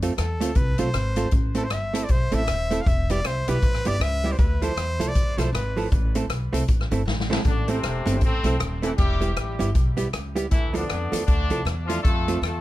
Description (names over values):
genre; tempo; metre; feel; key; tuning
ska; 157 BPM; 4/4; swing 60% on 8ths; A minor; A4 = 440 Hz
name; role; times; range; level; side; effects
hollow-body jazz guitar; accompaniment; 0.0-12.5 s; F3 to A4; -26 LUFS; right 4 dB; none
upright bass; bass; 0.0-12.6 s; D#1 to F2; -26 LUFS; equal; none
swinging big-band drum kit; drums; 0.0-12.5 s; hi-hat, kick drum, rim click, snare drum; -24 LUFS; equal; none
warm trumpet; melody; 0.2-5.9 s; A4 to F5; -30 LUFS; equal; dub echo
clear horn section; melody; 7.5-12.6 s; C3 to A4; -29 LUFS; left 2 dB; dub echo
room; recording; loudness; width
little or no reverb; none; -21 LUFS; side -16 dB against mid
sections
0.0-7.5 A section; 7.5-12.6 B section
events
trumpet solo 0.0-7.5; drum fill 7.1-7.5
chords
0.0 F; 1.3 Am; 2.9 Em; 4.4 Dmadd9; 5.9 Am; 9.0 Em; 10.5 Dmadd9; 12.0 F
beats
0.17 0.56 0.94 | 1.32 1.71 2.09 2.47 | 2.86 3.24 3.62 4.01 | 4.39 4.77 5.16 5.54 | 5.92 6.30 6.69 7.07 | 7.45 7.83 8.22 8.60 | 8.98 9.37 9.75 10.13 | 10.52 10.90 11.28 11.66 | 12.05 12.43